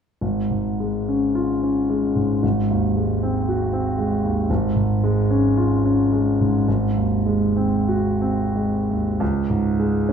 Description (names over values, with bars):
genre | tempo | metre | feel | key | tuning
classical, romantic nocturne for solo piano | 42-60 BPM | 4/4 | rubato | Db major | A4 = 440 Hz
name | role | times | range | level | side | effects
clear concert grand piano | solo | 0.2-10.1 s | Ab1 to Gb4 | -18 LUFS | equal | none
room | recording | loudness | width
wet recital hall reverb, RT60 1.3 s | recorded in a church or concert hall | -18 LUFS | side -7 dB against mid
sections
0.2-9.2 A section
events
none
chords
0.2 Db/Ab; 2.4 Ab7; 4.5 Db/Ab; 6.7 Ab7; 9.2 Db5